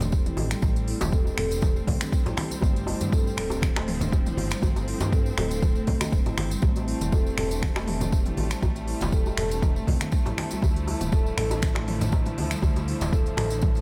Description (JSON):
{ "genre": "afro house", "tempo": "120 BPM", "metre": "4/4", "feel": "swing 54% on 16ths", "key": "A minor", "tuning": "A4 = 440 Hz", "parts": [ { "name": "warm studio string section", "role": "sustained chords", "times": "0.0-13.8 s", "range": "D3 to E4", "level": "-37 LUFS", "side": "equal", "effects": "sidechain pumping" }, { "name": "marimba with soft mallets", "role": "arpeggios", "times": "0.0-13.8 s", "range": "G3 to A4", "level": "-35 LUFS", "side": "equal", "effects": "sidechain pumping, tape echo" }, { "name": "smooth gliding synth bass", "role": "bass", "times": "0.0-13.8 s", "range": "D1 to G2", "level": "-33 LUFS", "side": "equal", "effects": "sidechain pumping" }, { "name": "deep house drum kit", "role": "drums", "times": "0.0-13.8 s", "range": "finger snaps, hi-hat, toms", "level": "-36 LUFS", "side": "equal", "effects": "none" }, { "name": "congas", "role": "percussion", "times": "0.0-13.5 s", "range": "none", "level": "-35 LUFS", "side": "equal", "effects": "none" }, { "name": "djembe", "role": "percussion", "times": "0.0-13.7 s", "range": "none", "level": "-37 LUFS", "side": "equal", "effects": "none" }, { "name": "tambourine", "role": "percussion", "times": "0.0-13.8 s", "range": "none", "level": "-44 LUFS", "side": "equal", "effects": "none" }, { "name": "electronic kick drum", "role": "drums", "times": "0.1-13.7 s", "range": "none", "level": "-26 LUFS", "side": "equal", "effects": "none" } ], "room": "studio reverb", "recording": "none", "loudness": "-25 LUFS", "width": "mono", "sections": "0.0-13.8 A section", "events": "none", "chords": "0.0 Am7; 2.6 G7sus4; 6.6 Am7; 10.6 Dmadd9" }